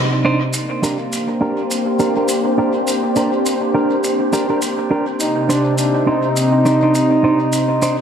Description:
ambient dub; 103 BPM; 4/4; swing 58% on 16ths; G minor; A4 = 440 Hz
warm analog pad; sustained chords; 0.0-8.0 s; C3 to G4; -18 LUFS; equal; wide subtle chorus
clean electric guitar; stabs; 0.2-8.0 s; D4 to C5; -20 LUFS; right 2 dB; low-pass filter, dub echo
shaker; drums; 0.5-8.0 s; -26 LUFS; equal; dub echo
wind-like tuned noise texture; texture; 1.2-8.0 s; C4 to C5; -24 LUFS; equal; built-in reverb
warm trombone; melody; 5.2-8.0 s; D4 to Eb4; -18 LUFS; equal; dub echo
wet scoring stage reverb, RT60 1.6 s, small room ambience; -14 LUFS; side -8 dB against mid
0.5-8.0 A section
0.0 Cmadd9; 0.5 Gm; 5.2 Cmadd9
| 0.54 1.12 1.71 2.29 | 2.87 3.46 4.04 4.62 | 5.20 5.79 6.37 6.95 | 7.53

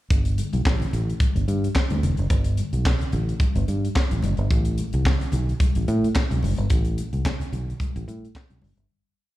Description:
disco; 109 BPM; 4/4; swing 56% on 16ths; G major; A4 = 443 Hz
fingered electric bass; bass; 0.1-8.9 s; E1 to A2; -23 LUFS; equal
tight funk drum kit; drums; 0.1-8.9 s; handclaps, hi-hat, kick drum, snare drum; -23 LUFS; equal
congas; percussion; 0.1-8.8 s; -33 LUFS; left 5 dB
little or no reverb; live gig heard through the venue's PA, club reverb; -20 LUFS; side -16 dB against mid
0.1-8.9 breakdown
fade-out 6.7-8.9
| 0.11 0.66 1.21 1.76 | 2.31 2.86 3.41 3.96 | 4.51 5.06 5.61 6.15 | 6.70 7.25 7.80 8.35

